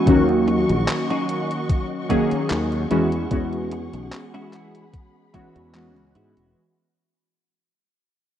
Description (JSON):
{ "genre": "vaporwave", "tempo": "74 BPM", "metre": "4/4", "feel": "swing 54% on 16ths", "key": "E lydian", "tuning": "A4 = 440 Hz", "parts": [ { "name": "warbly lo-fi synth keys", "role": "accompaniment", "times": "0.0-6.6 s", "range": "D#3 to G#4", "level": "-21 LUFS", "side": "equal", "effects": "ensemble chorus, tape echo" }, { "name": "warm studio string section", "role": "sustained chords", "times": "0.0-6.5 s", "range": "F#4 to C#6", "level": "-34 LUFS", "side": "equal", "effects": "none" }, { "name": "clean electric guitar", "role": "riff", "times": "0.0-6.6 s", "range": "G#3 to F#4", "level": "-32 LUFS", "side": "right 1 dB", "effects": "wide subtle chorus, tape echo" }, { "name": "sustaining fretless electric bass", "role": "bass", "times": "0.1-6.5 s", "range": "E1 to G#2", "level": "-24 LUFS", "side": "equal", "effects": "analog chorus" }, { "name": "detuned 8-bit digital drum machine", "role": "drums", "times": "0.1-6.5 s", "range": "handclaps, hi-hat", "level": "-30 LUFS", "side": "equal", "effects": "overdrive" }, { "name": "electronic kick drum", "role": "drums", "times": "0.1-5.5 s", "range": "none", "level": "-22 LUFS", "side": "equal", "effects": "overdrive" } ], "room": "moderate plate reverb, RT60 2.1 s", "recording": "rough home demo mix, cassette tape", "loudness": "-19 LUFS", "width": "side -10 dB against mid", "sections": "0.0-6.6 A section", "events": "fade-out 0.0-6.6", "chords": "0.1 D#m7; 2.9 E69", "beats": "| 0.07 0.88 1.70 2.51 | 3.32 4.13 4.94 5.75" }